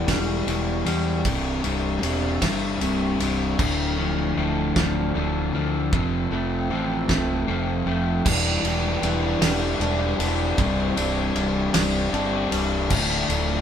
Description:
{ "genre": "post-rock", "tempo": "52 BPM (dotted quarters)", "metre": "6/8", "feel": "straight", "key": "unclear", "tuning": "A4 = 439 Hz", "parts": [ { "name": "sweeping resonant pad", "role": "sustained chords", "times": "0.0-13.6 s", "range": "C3 to A5", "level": "-34 LUFS", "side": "right 4 dB", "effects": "chorus, phaser" }, { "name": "electric guitar through a small old amp", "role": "arpeggios", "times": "0.0-13.6 s", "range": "C2 to D4", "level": "-29 LUFS", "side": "right 2 dB", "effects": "none" }, { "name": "overdriven electric guitar", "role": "riff", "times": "0.0-13.6 s", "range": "C2 to D4", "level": "-25 LUFS", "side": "left 4 dB", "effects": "none" }, { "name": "fuzz fingered electric bass", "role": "bass", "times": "0.0-13.6 s", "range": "C1 to E2", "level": "-28 LUFS", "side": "right 1 dB", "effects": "overdrive" }, { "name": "loose indie drum kit", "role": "drums", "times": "0.1-13.5 s", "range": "crash cymbal, kick drum, ride cymbal, snare drum", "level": "-26 LUFS", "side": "equal", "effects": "none" } ], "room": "light reverb", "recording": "band playing live in one room", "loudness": "-21 LUFS", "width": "side -8 dB against mid", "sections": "0.0-8.3 A section; 8.3-13.6 B section", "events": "build-up 0.0-8.3", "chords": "0.0 Em7; 1.3 Cadd9; 3.6 Dm; 5.9 Fadd9; 8.3 Em7; 10.6 Cadd9; 12.9 Dm", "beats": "0.08 | 1.25 2.42 | 3.59 4.76 | 5.93 7.09 | 8.26 9.42 | 10.59 11.75 | 12.91" }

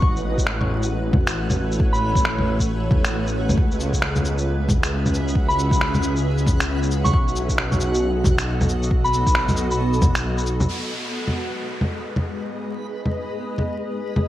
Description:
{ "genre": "future garage", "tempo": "135 BPM", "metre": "4/4", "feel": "swing 60% on 16ths", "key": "unclear", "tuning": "A4 = 439 Hz", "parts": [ { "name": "soft synth bell", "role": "melody", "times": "0.0-2.4, 5.5-9.5 s", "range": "B5 to C#6", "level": "-26 LUFS", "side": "equal", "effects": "chorus, digital delay" }, { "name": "granular cloud pad", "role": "sustained chords", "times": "0.0-14.3 s", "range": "G#3 to E5", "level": "-28 LUFS", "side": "equal", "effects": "built-in reverb, analog chorus, sidechain pumping" }, { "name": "swelling detuned saw bass", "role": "bass", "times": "0.0-10.7 s", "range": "A1 to C#2", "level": "-23 LUFS", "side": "equal", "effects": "sidechain pumping" }, { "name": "electronic kick drum", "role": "drums", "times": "0.0-10.1 s", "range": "none", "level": "-21 LUFS", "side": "equal", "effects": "none" }, { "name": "backwards swelling texture", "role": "texture", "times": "0.0-14.3 s", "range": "B3 to F#5", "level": "-33 LUFS", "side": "equal", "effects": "built-in reverb" }, { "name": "electronic shaker, finger snaps, bongos and cabasa", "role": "drums", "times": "0.2-14.2 s", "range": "none", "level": "-23 LUFS", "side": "equal", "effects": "gated reverb" }, { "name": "downlifter", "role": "sound effects", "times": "10.7-14.2 s", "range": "none", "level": "-33 LUFS", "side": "equal", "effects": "none" } ], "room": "light reverb", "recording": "bright 1980s-style digital production, vinyl crackle", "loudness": "-19 LUFS", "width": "side -14 dB against mid", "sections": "0.0-10.7 A section; 10.7-14.3 B section", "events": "none", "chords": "0.0 Aadd9; 3.6 C#m7; 7.1 B7; 10.7 G#m", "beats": "| 0.02 0.47 0.91 1.36 | 1.80 2.25 2.69 3.13 | 3.58 4.02 4.47 4.91 | 5.36 5.80 6.25 6.69 | 7.13 7.58 8.02 8.47 | 8.91 9.36 9.80 10.24 | 10.69 11.13 11.58 12.02 | 12.47 12.91 13.36 13.80 | 14.24" }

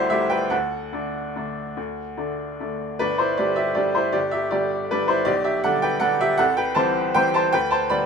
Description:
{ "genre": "classical, piano waltz", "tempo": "140-170 BPM", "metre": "3/4", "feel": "rubato", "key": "G major", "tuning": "A4 = 438 Hz", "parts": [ { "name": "bright upright piano", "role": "solo", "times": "0.0-8.1 s", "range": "G1 to B5", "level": "-20 LUFS", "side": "equal", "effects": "none" } ], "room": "light reverb", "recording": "minimal, uncompressed stereo recording", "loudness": "-20 LUFS", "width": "side -6 dB against mid", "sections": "0.0-8.1 A section", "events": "none", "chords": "0.0 Am7/C; 0.5 D; 3.0 G5; 5.3 G/B; 6.4 Am7/C; 7.5 G/D", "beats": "0.11 | 0.52 0.93 1.35 | 1.77 2.18 2.60 | 3.00 3.38 3.78 | 4.16 4.53 4.91 | 5.28 5.65 6.03 | 6.40 6.77 7.15 | 7.52 7.90" }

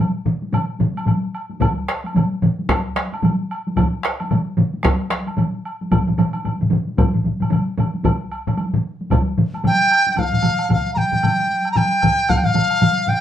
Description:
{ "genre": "japanese traditional, taiko drum ensemble", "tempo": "112 BPM", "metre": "4/4", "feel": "swing 60% on 16ths", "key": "unclear", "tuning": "A4 = 443 Hz", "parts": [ { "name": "woodblock", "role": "percussion", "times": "0.0-13.0 s", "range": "none", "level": "-29 LUFS", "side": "right 1 dB", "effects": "none" }, { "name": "taiko ensemble", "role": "percussion", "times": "0.3-13.2 s", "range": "none", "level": "-22 LUFS", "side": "left 2 dB", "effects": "none" }, { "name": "taiko ensemble", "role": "percussion", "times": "0.3-13.2 s", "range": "none", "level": "-22 LUFS", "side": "right 2 dB", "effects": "none" }, { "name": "taiko ensemble", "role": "percussion", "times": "0.4-13.2 s", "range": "none", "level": "-26 LUFS", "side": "left 1 dB", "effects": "none" }, { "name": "taiko ensemble", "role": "percussion", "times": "1.6-12.4 s", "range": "none", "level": "-21 LUFS", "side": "equal", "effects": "none" }, { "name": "mellow dizi", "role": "melody", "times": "9.7-13.2 s", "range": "F5 to Bb5", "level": "-17 LUFS", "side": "equal", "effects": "none" } ], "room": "wet studio ambience, RT60 0.5 s", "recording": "band playing live in one room", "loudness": "-17 LUFS", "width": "side -10 dB against mid", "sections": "0.0-10.2 A section; 10.2-13.2 B section", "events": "speeding up 0.0-13.2", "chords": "none", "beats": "0.53 1.07 | 1.61 2.15 2.69 3.23 | 3.77 4.30 4.84 5.38 | 5.91 6.45 6.98 7.52 | 8.05 8.58 9.11 9.64 | 10.17 10.70 11.23 11.76 | 12.29 12.81" }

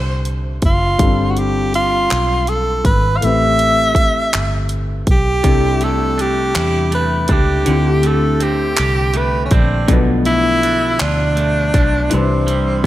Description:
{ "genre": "slow six-eight R&B", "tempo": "54 BPM (dotted quarters)", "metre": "6/8", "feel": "straight", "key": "C major", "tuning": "A4 = 440 Hz", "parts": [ { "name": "breathy tenor saxophone", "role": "melody", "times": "0.0-12.9 s", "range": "C4 to F5", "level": "-18 LUFS", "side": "equal", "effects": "slapback echo" }, { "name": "dark concert grand piano", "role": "accompaniment", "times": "0.0-12.9 s", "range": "A2 to E5", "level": "-22 LUFS", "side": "left 4 dB", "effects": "none" }, { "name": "vintage muted fingered electric bass", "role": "bass", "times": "0.0-12.9 s", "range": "F#1 to E2", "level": "-19 LUFS", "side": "equal", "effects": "none" }, { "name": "pop drum kit", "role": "drums", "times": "0.3-12.9 s", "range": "handclaps, hi-hat, kick drum", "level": "-17 LUFS", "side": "equal", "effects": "none" }, { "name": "electric guitar at the edge of break-up", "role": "second line", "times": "5.4-12.9 s", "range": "B2 to G4", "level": "-22 LUFS", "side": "right 4 dB", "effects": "slapback echo" } ], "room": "light reverb", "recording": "none", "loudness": "-13 LUFS", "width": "side -14 dB against mid", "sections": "0.0-12.9 A section", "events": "none", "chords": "0.0 D7sus4; 1.0 G9sus4; 3.2 Am9; 5.4 C69; 7.7 D7sus4; 9.9 Bm7b5; 12.1 Cmaj7", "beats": "| 1.00 2.11 | 3.22 4.33 | 5.44 6.55 | 7.66 8.77 | 9.88 11.00 | 12.11" }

